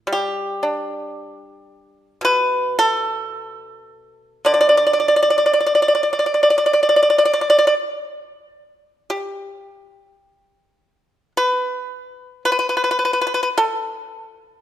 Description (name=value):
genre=chinese traditional, Chinese solo plucked strings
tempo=54 BPM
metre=4/4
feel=uneven beats, rubato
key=unclear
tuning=A4 = 444 Hz
part: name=pipa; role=solo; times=0.0-14.6 s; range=B2 to D5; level=-16 LUFS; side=equal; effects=none
room=light reverb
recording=minimal, uncompressed stereo recording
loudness=-15 LUFS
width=side -12 dB against mid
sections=0.0-9.1 A section; 9.1-14.6 B section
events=none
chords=none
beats=| 0.09 1.16 2.23 3.34 | 4.46 5.59 6.73 7.91 | 9.09 10.23 11.35 12.45 | 13.54